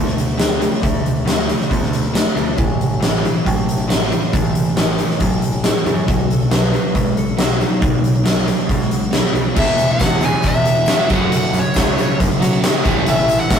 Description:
classic rock; 137 BPM; 4/4; straight; A4 = 440 Hz
biting overdriven guitar; riff; 0.0-13.6 s; E2 to B3; -25 LUFS; left 6 dB
overdriven semi-hollow guitar; riff; 0.0-13.6 s; E2 to G#4; -22 LUFS; right 6 dB; phaser
growling picked electric bass; bass; 0.0-13.6 s; A1 to F#3; -22 LUFS; equal; overdrive
huge arena drum kit; drums; 0.1-13.6 s; crash cymbal, hi-hat, kick drum, snare drum, tambourine; -17 LUFS; equal
electric slide guitar; second line; 6.1-8.5 s; D#4 to B4; -26 LUFS; left 2 dB
nasal lead guitar with a parked wah; melody; 9.6-13.6 s; C#5 to G#5; -19 LUFS; left 2 dB; overdrive
tambourine; percussion; 9.8-13.6 s; -37 LUFS; left 4 dB
tonewheel organ; sustained chords; 13.1-13.6 s; C#4 to E5; -28 LUFS; right 1 dB; slow rotary speaker, overdrive
moderate stone room reverb, RT60 1.1 s; rough rehearsal-room recording, warm saturation; -14 LUFS; side -8 dB against mid
0.0-9.6 A section; 9.6-13.6 B section
0.0 D5; 2.6 A5; 6.1 B; 9.6 E; 11.1 F#m; 12.8 A
0.39 | 0.83 1.27 1.71 2.14 | 2.58 3.02 3.46 3.89 | 4.33 4.77 5.21 5.64 | 6.08 6.52 6.95 7.39 | 7.83 8.26 8.70 9.14 | 9.57 10.01 10.45 10.88 | 11.32 11.76 12.19 12.63 | 13.06 13.50

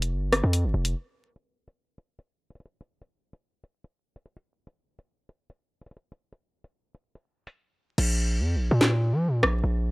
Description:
hip hop, drill; 145 BPM; 4/4; half-time; A4 = 436 Hz
hard-hitting 808-style bass; bass; 0.0-0.9, 8.0-9.9 s; F1 to F3; -24 LUFS; equal
drill drum kit; drums; 0.0-9.5 s; crash cymbal, hi-hat, rim click, snare drum; -25 LUFS; equal
little or no reverb; dry, gritty hardware recording, vinyl crackle, low-pass filter; -22 LUFS; side -26 dB against mid
0.0-1.4 A section; 1.4-8.0 B section; 8.0-9.9 C section
break 0.9-1.4; filter sweep 1.4-8.0; hi-hats muted 8.0-9.9
0.12 0.53 0.95 | 1.36 1.77 2.19 2.60 | 3.02 3.43 3.84 4.26 | 4.67 5.08 5.50 5.91 | 6.33 6.74 7.15 7.57 | 7.98 8.39 8.81 9.22 | 9.64

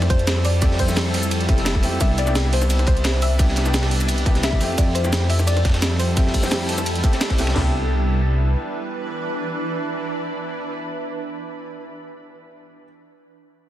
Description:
liquid drum and bass; 173 BPM; 4/4; straight; C major; A4 = 439 Hz
soft round pluck; melody; 0.0-7.2 s; C5 to E5; -28 LUFS; left 2 dB; analog chorus, dub echo
clear grand piano; accompaniment; 0.0-12.8 s; A3 to G4; -30 LUFS; equal; dub echo
shimmering ambient pad; sustained chords; 0.0-11.1 s; E3 to B5; -28 LUFS; right 1 dB; chorus, built-in reverb
dark detuned saw bass; bass; 0.0-8.6 s; F1 to F2; -20 LUFS; equal
breakbeat sampler-style drum kit; drums; 0.0-7.5 s; hi-hat, ride cymbal, shaker, snare drum; -26 LUFS; right 1 dB; small room ambience
crunchy breakbeat drum kit; drums; 0.1-7.6 s; hi-hat, ride cymbal, snare drum; -31 LUFS; equal; high-pass filter on cymbals, small room ambience, high-pass filter on hats, high-pass filter on snare, high-pass filter on room
drum and bass drum kit; drums; 0.1-7.6 s; hi-hat, kick drum, snare drum, toms; -19 LUFS; equal; small room ambience
light reverb, digital ambience; dense, heavily limited modern master; -18 LUFS; side -13 dB against mid
0.0-7.6 A section; 7.6-10.3 B section
drop 0.0-7.6
0.0 Fmaj9; 2.0 Cmaj9; 4.6 Fmaj9; 7.6 Cmaj9
0.27 | 0.62 0.97 1.31 1.66 | 2.01 2.35 2.70 3.05 | 3.40 3.74 4.09 4.43 | 4.78 5.13 5.48 5.82 | 6.17 6.52 6.86 7.21 | 7.56 7.90 8.25 8.60 | 8.94 9.29 9.64 9.98

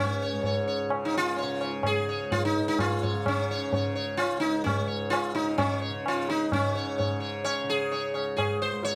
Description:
indian classical, Hindustani; 128 BPM; 7/4; straight; Db raga hamsadhwani; A4 = 440 Hz
sitar; melody; 0.0-8.9 s; Db4 to Db5; -30 LUFS; equal
tanpura; drone; 0.0-8.9 s; Db2 to Db3; -37 LUFS; equal
tabla; percussion; 0.4-8.9 s; -33 LUFS; equal
wet small room reverb, RT60 0.5 s; -28 LUFS; mono
0.0-6.5 A section; 6.5-8.9 B section
0.43 0.91 1.38 1.85 2.32 2.79 | 3.26 3.73 4.19 4.66 5.13 5.59 6.06 | 6.52 6.99 7.45 7.91 8.37 8.83

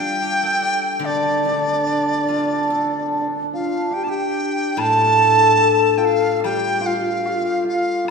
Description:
chinese traditional, Chinese chamber ensemble; 72 BPM; 4/4; straight; D yu mode; A4 = 440 Hz
dizi; melody; 0.0-8.1 s; D5 to A5; -20 LUFS; equal
hammered dulcimer; second line; 0.0-8.1 s; D4 to A4; -22 LUFS; right 5 dB
steel-string zither; accompaniment; 0.0-8.1 s; A2 to D5; -27 LUFS; left 1 dB
mellow xiao; second line; 3.5-8.1 s; F4 to A4; -21 LUFS; left 8 dB
woodblock; percussion; 4.8-8.1 s; -33 LUFS; left 5 dB
wet concert hall reverb, RT60 2.3 s; heard from further back in the room; -16 LUFS; side -5 dB against mid
0.0-4.8 A section; 4.8-8.1 B section
0.61 | 1.43 2.26 3.10 3.94 | 4.78 5.62 6.44 7.27 | 8.09

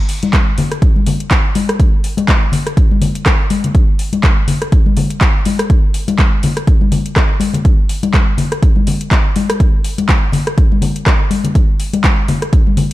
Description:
house; 123 BPM; 4/4; swing 57% on 16ths
deep house drum kit; drums; 0.1-12.9 s; handclaps, hi-hat, rim click; -20 LUFS; equal; overdrive, studio reverb
congas; percussion; 0.2-12.9 s; -18 LUFS; left 4 dB
electronic kick drum; drums; 0.3-12.6 s; -12 LUFS; equal; overdrive, studio reverb
digital ambience; dark, warm production; -11 LUFS; side -16 dB against mid
0.0-12.9 A section
0.33 0.82 1.31 | 1.80 2.28 2.77 3.26 | 3.75 4.24 4.72 5.21 | 5.70 6.19 6.67 7.16 | 7.65 8.14 8.63 9.11 | 9.60 10.09 10.58 11.06 | 11.55 12.04 12.53

